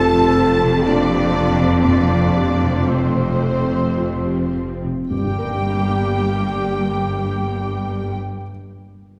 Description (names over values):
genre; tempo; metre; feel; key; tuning
cinematic, emotional film score for orchestra; 52-67 BPM; 3/4; rubato; G minor; A4 = 440 Hz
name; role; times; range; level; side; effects
rich studio violin section; melody; 0.0-8.1 s; C5 to A5; -31 LUFS; equal; none
mellow clarinet; second line; 0.0-8.1 s; A3 to G4; -30 LUFS; equal; none
mellow cor anglais; second line; 0.0-8.1 s; C4 to A4; -31 LUFS; equal; none
rich studio violin section; second line; 0.0-8.1 s; C5 to A5; -33 LUFS; equal; none
felt-muted upright piano; accompaniment; 0.0-9.2 s; F2 to G5; -25 LUFS; equal; none
warm symphonic viola section; accompaniment; 0.0-8.1 s; F3 to G4; -29 LUFS; equal; none
clear French horn section; sustained chords; 0.0-8.2 s; G3 to A4; -27 LUFS; equal; none
rich symphonic cello section; bass; 0.0-8.1 s; F2 to G2; -26 LUFS; equal; none
rich symphonic double bass section; bass; 0.0-8.1 s; F1 to G1; -26 LUFS; equal; none
timpani; percussion; 5.1-8.1 s; G2; -36 LUFS; equal; none
room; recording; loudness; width
wet scoring stage reverb, RT60 1.8 s; heard from further back in the room; -19 LUFS; mono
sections
0.0-5.1 A section; 5.1-8.5 B section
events
slowing down 0.0-5.1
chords
0.0 F; 5.1 Gm